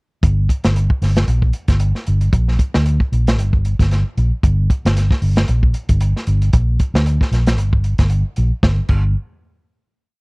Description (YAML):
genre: afrobeat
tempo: 114 BPM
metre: 4/4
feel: swing 56% on 16ths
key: G minor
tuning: A4 = 442 Hz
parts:
  - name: fingered electric bass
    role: bass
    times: 0.2-9.1 s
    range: G1 to D2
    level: -15 LUFS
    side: equal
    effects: none
  - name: crunchy breakbeat drum kit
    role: drums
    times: 0.2-9.0 s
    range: crash cymbal, hi-hat, kick drum, snare drum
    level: -16 LUFS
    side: equal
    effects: none
room: little or no reverb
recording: dry, close 1970s-style studio recording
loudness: -14 LUFS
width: side -35 dB against mid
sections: 0.2-8.6 groove; 8.6-10.2 final note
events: none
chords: none